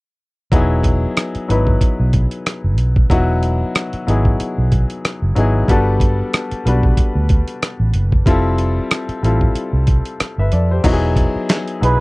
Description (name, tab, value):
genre	R&B, neo-soul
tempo	93 BPM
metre	4/4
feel	swing 56% on 16ths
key	unclear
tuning	A4 = 438 Hz
part	clear grand piano	accompaniment	0.5-12.0 s	F#3 to E5	-20 LUFS	left 2 dB	none
part	vintage muted fingered electric bass	bass	0.5-12.0 s	E1 to F2	-16 LUFS	equal	none
part	dusty soul sampler-style drum kit	drums	0.5-12.0 s	crash cymbal, hi-hat, kick drum, rim click, snare drum	-16 LUFS	equal	none
part	trumpet with cup mute	melody	11.8-12.0 s	B4	-15 LUFS	right 3 dB	none
room	little or no reverb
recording	dry, close 1970s-style studio recording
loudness	-14 LUFS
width	side -23 dB against mid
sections	0.5-10.8 A section; 10.8-12.0 B section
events	none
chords	0.5 Emaj9; 5.7 Gmaj9; 8.3 Fmaj9; 10.8 Emaj9